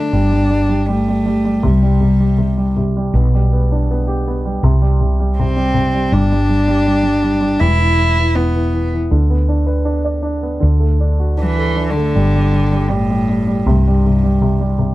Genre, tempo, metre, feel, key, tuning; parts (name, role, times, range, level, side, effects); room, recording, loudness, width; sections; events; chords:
folk; 80 BPM; 4/4; straight; G major; A4 = 440 Hz
warm cello; melody; 0.0-14.8 s; G2 to E4; -16 LUFS; equal
warm upright piano; accompaniment; 0.0-14.9 s; B2 to D5; -19 LUFS; right 1 dB
woody fretless electric bass; bass; 0.0-14.9 s; E1 to D2; -16 LUFS; equal
light reverb; dark, warm production; -13 LUFS; side -16 dB against mid
0.0-12.2 A section; 12.2-14.9 A section
0.1 Gsus2; 1.6 C5; 3.1 G/B; 4.6 C5; 6.1 G5; 7.6 E5; 9.1 Bm/D; 10.6 D; 12.2 Gsus2; 13.7 C5